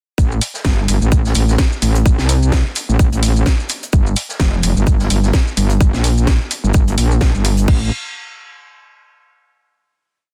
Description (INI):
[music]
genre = bass house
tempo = 128 BPM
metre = 4/4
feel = swing 55% on 16ths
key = unclear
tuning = A4 = 441 Hz
[part]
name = metallic wobble bass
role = bass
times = 0.2-7.9 s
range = F1 to C2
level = -17 LUFS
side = equal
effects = chorus, overdrive, sidechain pumping
[part]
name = electronic kick drum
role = drums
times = 0.2-7.8 s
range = none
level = -16 LUFS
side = equal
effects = none
[part]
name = garage drum kit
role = drums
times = 0.2-7.8 s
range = crash cymbal, hi-hat, shaker, snare drum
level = -25 LUFS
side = equal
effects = none
[part]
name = swinging big-band drum kit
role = drums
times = 0.2-7.7 s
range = hi-hat, shaker, snare drum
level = -34 LUFS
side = equal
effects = none
[sound]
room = little or no reverb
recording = dense, heavily limited modern master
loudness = -15 LUFS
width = mono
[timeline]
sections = 0.2-7.7 drop; 7.7-9.6 final note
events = drop 0.2-7.7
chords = none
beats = | 0.18 0.65 1.12 1.59 | 2.06 2.52 2.99 3.46 | 3.93 4.40 4.87 5.34 | 5.80 6.27 6.74 7.21 | 7.68